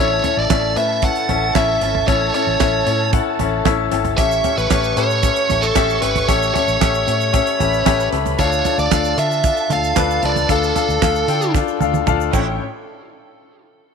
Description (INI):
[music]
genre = piano-driven pop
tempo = 114 BPM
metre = 4/4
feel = straight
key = A mixolydian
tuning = A4 = 440 Hz
[part]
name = biting lead guitar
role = melody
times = 0.0-11.5 s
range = A4 to F#5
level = -20 LUFS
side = right 3 dB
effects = overdrive
[part]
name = warm studio violin section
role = second line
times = 0.0-12.6 s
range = E4 to C#6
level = -26 LUFS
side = right 11 dB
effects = none
[part]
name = warm grand piano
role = accompaniment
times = 0.0-12.6 s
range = A1 to A5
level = -20 LUFS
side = left 13 dB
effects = none
[part]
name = vintage muted fingered electric bass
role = bass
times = 0.0-12.6 s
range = G#1 to D3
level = -24 LUFS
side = right 1 dB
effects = none
[part]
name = damped 70s drum kit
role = drums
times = 0.2-12.5 s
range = crash cymbal, handclaps, hi-hat, kick drum, snare drum, toms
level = -20 LUFS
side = right 4 dB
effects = none
[part]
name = egg shaker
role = percussion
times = 4.2-12.6 s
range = none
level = -37 LUFS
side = right 20 dB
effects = none
[sound]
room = light reverb, small room ambience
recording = 1960s-style stereo with parts hard left and right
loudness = -15 LUFS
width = side -6 dB against mid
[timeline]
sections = 0.0-12.6 A section; 12.6-13.9 B section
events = grand piano fill 3.4-4.2, 11.8-12.6; drum fill 11.5-12.6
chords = 0.0 A; 4.2 A7; 8.4 Dm; 12.3 A7; 12.6 N.C.